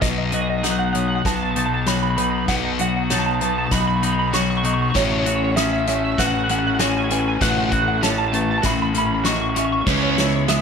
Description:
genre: post-rock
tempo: 98 BPM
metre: 4/4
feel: straight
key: unclear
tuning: A4 = 440 Hz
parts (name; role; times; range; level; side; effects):
- twelve-string electric guitar; melody; 0.0-10.6 s; C#5 to C#6; -23 LUFS; right 3 dB; analog chorus, analog delay
- clear studio string section; sustained chords; 0.0-10.6 s; C#3 to F#4; -33 LUFS; right 4 dB; none
- felt-muted upright piano; arpeggios; 0.0-10.6 s; B4 to D#6; -32 LUFS; right 9 dB; analog delay
- twangy electric guitar; arpeggios; 0.0-10.6 s; A2 to F#4; -27 LUFS; left 1 dB; analog delay
- sludgy distorted guitar; riff; 0.0-10.6 s; B2 to F#4; -24 LUFS; left 9 dB; overdrive
- fuzz fingered electric bass; bass; 0.0-10.6 s; A1 to C#2; -24 LUFS; right 1 dB; overdrive
- loose indie drum kit; drums; 0.0-10.6 s; crash cymbal, hi-hat, kick drum, snare drum; -24 LUFS; equal; none
- biting overdriven guitar; riff; 9.9-10.6 s; C#3 to C#4; -23 LUFS; right 15 dB; none
room: moderate large studio reverb, RT60 0.9 s, small room ambience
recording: none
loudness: -17 LUFS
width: side -6 dB against mid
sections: 0.0-10.6 A section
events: build-up 0.0-10.6; drum fill 0.0-10.6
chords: 0.0 B; 5.0 F#m/A; 9.9 C#m7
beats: | 0.03 0.65 1.26 1.88 | 2.50 3.11 3.73 4.34 | 4.96 5.58 6.19 6.80 | 7.42 8.03 8.64 9.26 | 9.87 10.48

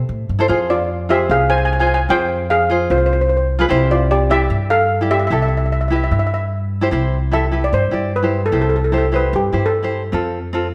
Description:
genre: calypso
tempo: 149 BPM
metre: 4/4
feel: straight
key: C major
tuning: A4 = 440 Hz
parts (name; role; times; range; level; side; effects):
- upright bass; bass; 0.0-10.7 s; C2 to A2; -22 LUFS; equal; none
- tenor ukulele; accompaniment; 0.4-10.7 s; C4 to D5; -23 LUFS; equal; none
- steel pan; melody; 0.7-10.6 s; F4 to Ab5; -20 LUFS; equal; none
room: moderate recital hall reverb, RT60 1.4 s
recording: none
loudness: -17 LUFS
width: mono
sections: 0.0-6.9 A section; 6.9-10.7 B section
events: steel pan solo 6.9-10.7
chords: 0.5 Fm; 3.7 C; 10.1 F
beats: 0.09 | 0.49 0.89 1.29 1.69 | 2.10 2.50 2.90 3.30 | 3.70 4.10 4.50 4.91 | 5.31 5.71 6.11 6.51 | 6.91 7.32 7.72 8.12 | 8.52 8.93 9.33 9.73 | 10.13 10.54

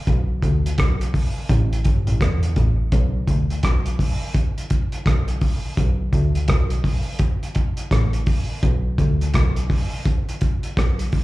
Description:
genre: roots reggae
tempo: 84 BPM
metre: 4/4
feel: swing 61% on 16ths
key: unclear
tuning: A4 = 440 Hz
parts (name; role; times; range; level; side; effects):
- clear double bass; bass; 0.1-11.1 s; G1 to E2; -20 LUFS; equal; none
- cloth-damped thuddy drum kit; drums; 0.1-11.2 s; hi-hat, kick drum, rim click; -21 LUFS; equal; none
room: little or no reverb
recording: live gig heard through the venue's PA, club reverb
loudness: -18 LUFS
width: side -18 dB against mid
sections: 0.0-11.2 A section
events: none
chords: none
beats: | 0.07 0.78 1.50 2.21 | 2.92 3.64 4.35 5.06 | 5.78 6.49 7.20 7.92 | 8.63 9.35 10.06 10.78

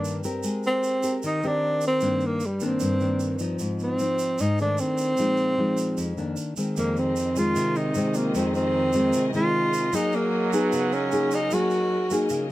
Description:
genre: bossa nova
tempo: 152 BPM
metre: 4/4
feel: straight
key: C minor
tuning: A4 = 437 Hz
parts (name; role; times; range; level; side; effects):
- breathy tenor saxophone; melody; 0.0-12.3 s; G3 to Gb4; -24 LUFS; right 1 dB; none
- nylon-string guitar; accompaniment; 0.0-12.5 s; F2 to Bb4; -26 LUFS; left 1 dB; none
- tube shaker; percussion; 0.0-12.5 s; none; -38 LUFS; right 5 dB; none
- clear trombone; second line; 6.8-12.5 s; Eb3 to Gb3; -34 LUFS; right 5 dB; none
- warm symphonic string section; sustained chords; 6.8-12.5 s; Gb3 to Eb5; -34 LUFS; left 1 dB; none
room: light reverb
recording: close, detailed microphones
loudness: -22 LUFS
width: side -16 dB against mid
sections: 0.0-6.8 A section; 6.8-12.5 B section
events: none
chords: 0.4 Abmaj9; 2.0 Cm9/G; 3.6 Fm7/Ab; 4.8 Cm69/Eb; 5.2 Bb7sus4; 6.4 Cm9; 6.8 Fm7; 9.9 Gb69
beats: 0.04 | 0.43 0.83 1.22 1.62 | 2.02 2.41 2.81 3.20 | 3.60 3.99 4.39 4.78 | 5.18 5.58 5.97 6.37 | 6.76 7.16 7.55 7.95 | 8.34 8.74 9.13 9.53 | 9.93 10.32 10.71 11.11 | 11.51 11.90 12.30

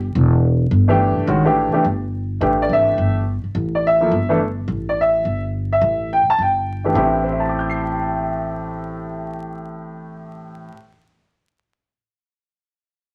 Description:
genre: modal jazz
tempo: 211 BPM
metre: 4/4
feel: swing 61% on 8ths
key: unclear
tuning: A4 = 440 Hz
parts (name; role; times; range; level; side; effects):
- upright bass; bass; 0.0-10.7 s; E1 to A1; -24 LUFS; equal; none
- clear baby grand piano; accompaniment; 0.9-10.9 s; A2 to C7; -20 LUFS; equal; none
room: moderate club reverb, RT60 0.6 s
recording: vinyl crackle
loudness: -19 LUFS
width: mono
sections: 0.0-2.4 A section; 2.4-7.0 B section; 7.0-9.2 C section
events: none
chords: 0.0 Cadd9 (rootless); 2.4 Gsus2; 7.0 Am7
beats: | 0.15 0.43 0.71 1.00 | 1.28 1.56 1.85 2.13 | 2.42 2.70 2.98 3.27 | 3.55 3.83 4.12 4.40 | 4.69 4.97 5.25 5.54 | 5.82 6.11 6.39 6.67 | 6.96 7.24 7.53 7.81 | 8.09 8.38 8.66 8.94

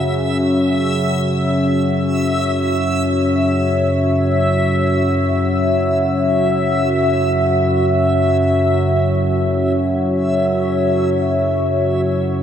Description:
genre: ambient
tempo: free time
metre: none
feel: none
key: unclear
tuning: A4 = 440 Hz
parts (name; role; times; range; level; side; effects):
- dark analog pad; sustained chords; 0.0-12.4 s; F#4 to F#5; -18 LUFS; equal; chorus, phaser
- analog drone; drone; 0.0-12.4 s; F#2 to C#3; -17 LUFS; equal; chorus
- backwards swelling texture; texture; 0.0-12.4 s; E5; -24 LUFS; equal; built-in reverb
room: wet huge ambient reverb, RT60 8.6 s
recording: none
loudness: -14 LUFS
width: side -9 dB against mid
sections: 0.0-12.4 A section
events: none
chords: 0.0 F#5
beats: free time

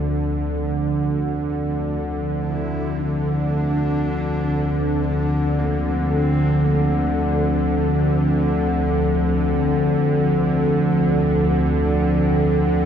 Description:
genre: dark ambient drone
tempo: free time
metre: none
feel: none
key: D minor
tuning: A4 = 440 Hz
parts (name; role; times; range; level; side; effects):
- warm horsehead fiddle; melody; 0.0-10.3 s; A3 to E4; -33 LUFS; equal; ping-pong delay
- dark analog pad; sustained chords; 0.0-12.9 s; D3 to A4; -21 LUFS; left 1 dB; chorus
- bowed-like drone; drone; 0.0-12.9 s; D2 to D3; -21 LUFS; equal; built-in reverb
room: wet cathedral reverb, RT60 7.1 s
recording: in a vast, echoing space, nothing above 7.9 kHz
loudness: -18 LUFS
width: side -8 dB against mid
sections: 0.0-12.9 A section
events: fade-in on horsehead fiddle 0.0-12.9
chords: 0.0 Dm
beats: free time

